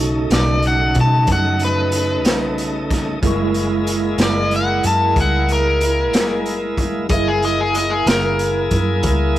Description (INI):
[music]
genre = slow blues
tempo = 62 BPM (dotted quarters)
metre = 12/8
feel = straight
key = unclear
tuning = A4 = 444 Hz
[part]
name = mellow tine electric piano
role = accompaniment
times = 0.0-9.4 s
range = G#3 to C#6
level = -24 LUFS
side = right 3 dB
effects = medium stereo tremolo
[part]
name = bright tonewheel organ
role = sustained chords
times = 0.0-9.4 s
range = C#3 to G#4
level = -22 LUFS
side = left 1 dB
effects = slow rotary speaker, overdrive
[part]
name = vintage muted fingered electric bass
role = bass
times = 0.0-9.4 s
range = F#1 to B2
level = -21 LUFS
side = equal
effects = none
[part]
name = overdriven semi-hollow guitar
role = melody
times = 0.3-9.4 s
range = G#4 to A5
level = -20 LUFS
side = left 1 dB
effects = tape echo
[part]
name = raw garage drum kit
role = drums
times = 0.3-9.4 s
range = hi-hat, kick drum, snare drum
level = -21 LUFS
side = equal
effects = none
[sound]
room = light reverb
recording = rough rehearsal-room recording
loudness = -15 LUFS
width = side -13 dB against mid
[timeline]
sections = 0.0-9.4 A section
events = overdriven electric guitar solo 0.0-9.4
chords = 0.0 B7; 3.2 F#7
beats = 0.31 1.28 2.26 | 3.23 4.20 5.17 6.14 | 7.11 8.08 9.05